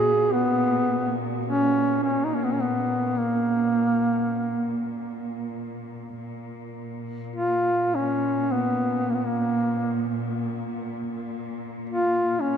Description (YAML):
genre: caucasian folk, Caucasian lament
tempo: 47-55 BPM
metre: 4/4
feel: rubato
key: Bb phrygian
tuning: A4 = 442 Hz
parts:
  - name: dark duduk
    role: melody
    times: 0.0-12.6 s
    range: Bb3 to Ab4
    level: -23 LUFS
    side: equal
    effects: none
  - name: warm studio cello section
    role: drone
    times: 0.0-12.6 s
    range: Bb2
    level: -30 LUFS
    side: equal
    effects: none
room: wet cathedral reverb, RT60 6.8 s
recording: minimal, uncompressed stereo recording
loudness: -22 LUFS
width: side -8 dB against mid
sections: 0.0-6.2 A section; 6.2-12.6 B section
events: none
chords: none